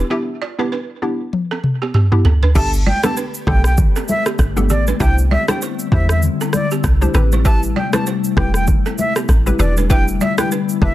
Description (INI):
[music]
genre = afrobeats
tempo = 98 BPM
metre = 4/4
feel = swing 58% on 16ths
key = unclear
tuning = A4 = 440 Hz
[part]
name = hollow square pluck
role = accompaniment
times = 0.0-10.9 s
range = B3 to C5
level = -23 LUFS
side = left 1 dB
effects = chorus
[part]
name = balafon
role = riff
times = 0.0-10.6 s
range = B3 to E5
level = -26 LUFS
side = right 6 dB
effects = tape echo
[part]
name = deep log drum bass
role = bass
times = 0.0-10.9 s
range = E1 to E2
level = -16 LUFS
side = equal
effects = none
[part]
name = afro-pop drum kit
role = drums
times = 1.3-10.9 s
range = crash cymbal, kick drum, rim click, shaker, toms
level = -17 LUFS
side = equal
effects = overdrive
[part]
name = jazz flute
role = melody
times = 2.6-10.9 s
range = D5 to A5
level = -23 LUFS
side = right 1 dB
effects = tape echo
[part]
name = glassy FM pad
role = sustained chords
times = 3.2-10.9 s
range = C3 to G4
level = -23 LUFS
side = left 6 dB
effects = ensemble chorus, built-in reverb
[part]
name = congas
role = percussion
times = 2.9-10.9 s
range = none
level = -24 LUFS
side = left 2 dB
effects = none
[sound]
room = light reverb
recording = dense, heavily limited modern master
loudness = -14 LUFS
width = side -14 dB against mid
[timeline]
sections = 0.0-2.6 A section; 2.6-10.9 B section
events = drum fill 1.3-2.6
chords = 0.0 Em7; 2.6 Gadd9; 5.0 Cadd9; 7.1 Em7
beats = | 0.11 0.72 1.33 1.94 | 2.56 3.17 3.78 4.39 | 5.00 5.62 6.23 6.84 | 7.45 8.06 8.68 9.29 | 9.90 10.51